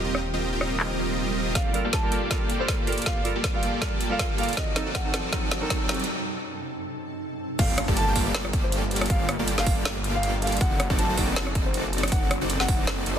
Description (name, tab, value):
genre	future bass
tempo	159 BPM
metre	4/4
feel	swing 55% on 16ths, half-time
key	G minor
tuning	A4 = 440 Hz
part	glassy digital keys	accompaniment	0.0-6.0 s	Eb3 to Bb4	-33 LUFS	right 3 dB	chorus, sidechain pumping, tape echo
part	shimmering ambient pad	sustained chords	0.0-13.2 s	F#2 to A4	-37 LUFS	equal	none
part	dense compressed supersaw	riff	0.0-13.2 s	Bb3 to G5	-30 LUFS	equal	sidechain pumping, low-pass filter
part	wide detuned saw bass	bass	0.0-1.5, 7.6-13.2 s	Eb1 to G1	-29 LUFS	equal	chorus, sidechain pumping
part	trap drum kit	drums	0.1-13.1 s	crash cymbal, handclaps, hi-hat, rim click, snare drum	-29 LUFS	equal	soft clipping on snare, low-pass filter on snare, low-pass filter on hats, low-pass filter on cymbals
part	swell, riser and impact	sound effects	0.9-9.1 s	none	-36 LUFS	right 2 dB	none
part	dark baby grand piano	melody	1.6-13.2 s	Bb4 to A5	-32 LUFS	equal	sidechain pumping, tape echo
part	electronic kick drum	drums	1.6-12.8 s	none	-27 LUFS	equal	overdrive
room	light reverb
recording	dense, heavily limited modern master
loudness	-23 LUFS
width	side -9 dB against mid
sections	0.0-1.6 A section; 1.6-7.6 B section; 7.6-13.2 C section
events	swell 0.9-1.6; build-up 1.6-7.6; drum fill 1.6-6.1; break 6.1-7.6; drop 7.6-13.2; impact 7.6-9.1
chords	0.0 Eb69; 1.6 Gm9; 4.6 D7b9/F#; 7.4 Gm9; 10.6 D7b9/F#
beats	| 0.04 0.42 0.80 1.18 | 1.55 1.93 2.31 2.69 | 3.06 3.44 3.82 4.19 | 4.57 4.95 5.33 5.70 | 6.08 6.46 6.84 7.21 | 7.59 7.97 8.35 8.72 | 9.10 9.48 9.86 10.23 | 10.61 10.99 11.36 11.74 | 12.12 12.50 12.87